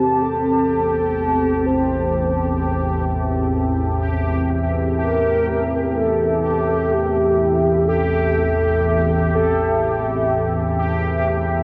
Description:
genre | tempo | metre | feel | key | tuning
dark ambient drone | free time | none | none | A minor | A4 = 440 Hz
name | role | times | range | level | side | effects
mellow horn-like synth lead | melody | 0.0-10.3 s | G4 to C5 | -24 LUFS | equal | chorus, delay
deep dark ambient pad | sustained chords | 0.0-11.6 s | C4 to A5 | -25 LUFS | equal | chorus, built-in reverb
organ-like drone | drone | 0.0-11.6 s | A1 to E2 | -24 LUFS | equal | ensemble chorus, built-in reverb, phaser
bubbling stepped-filter texture | texture | 0.0-11.6 s | G4 | -29 LUFS | equal | chorus, built-in reverb
room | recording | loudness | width
wet huge ambient reverb, RT60 8.8 s | worn, warbling old tape, cassette tape, warbly pitch drift | -19 LUFS | mono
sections
0.0-11.6 A section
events
filter sweep on synth drone 0.0-11.6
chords
0.0 Am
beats
free time

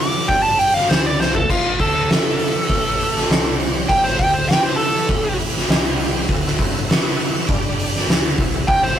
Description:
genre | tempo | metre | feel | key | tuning
blues rock power trio and southern rock | 100 BPM | 4/4 | straight | D mixolydian | A4 = 440 Hz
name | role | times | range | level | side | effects
biting lead guitar | melody | 0.0-9.0 s | F4 to D6 | -18 LUFS | right 1 dB | overdrive
bright tonewheel organ | sustained chords | 0.0-9.0 s | G3 to E5 | -30 LUFS | right 2 dB | slow rotary speaker, chorus vibrato
growling fingered electric bass | bass | 0.3-9.0 s | A1 to G2 | -26 LUFS | equal | overdrive
oversized low-tuned drum kit | drums | 0.3-8.9 s | crash cymbal, hi-hat, kick drum, snare drum, toms | -18 LUFS | equal | none
room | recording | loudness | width
light reverb | rough rehearsal-room recording, tube saturation | -15 LUFS | side -10 dB against mid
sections
0.0-9.0 A section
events
lead electric guitar solo 0.0-9.0; drum fill 1.2-1.5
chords
0.3 G5; 0.9 D7; 1.5 A7; 3.3 C5; 3.9 A7; 5.7 C5; 6.3 D7; 7.5 G5; 8.1 D7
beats
0.29 0.89 | 1.49 2.09 2.69 3.29 | 3.89 4.49 5.09 5.69 | 6.29 6.88 7.48 8.08 | 8.68

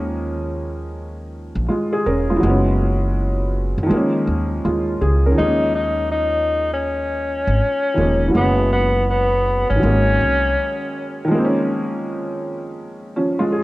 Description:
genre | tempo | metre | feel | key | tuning
hip hop | 81 BPM | 4/4 | swing 64% on 16ths | Eb minor | A4 = 440 Hz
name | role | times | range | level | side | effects
felt-muted upright piano | accompaniment | 0.0-13.6 s | Eb3 to Bb4 | -20 LUFS | equal | cassette tape, low-pass filter
upright bass | bass | 0.0-10.5 s | Fb1 to Eb3 | -21 LUFS | equal | none
warm tenor saxophone | melody | 5.4-11.3 s | Cb4 to Eb4 | -19 LUFS | left 1 dB | low-pass filter
room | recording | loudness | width
moderate plate reverb, RT60 2.8 s | worn, warbling old tape, cassette tape, warbly pitch drift | -16 LUFS | side -18 dB against mid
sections
0.0-5.4 A section; 5.4-13.6 A section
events
break 11.3-13.6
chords
0.0 Eb9sus4; 2.4 Gb9sus4; 3.9 Eb9sus4; 8.3 Gb9sus4; 9.8 Ab9sus4; 11.3 Eb9sus4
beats
0.19 0.93 1.67 | 2.41 3.15 3.90 4.64 | 5.38 6.12 6.86 7.60 | 8.34 9.08 9.82 10.56 | 11.30 12.04 12.79 13.53

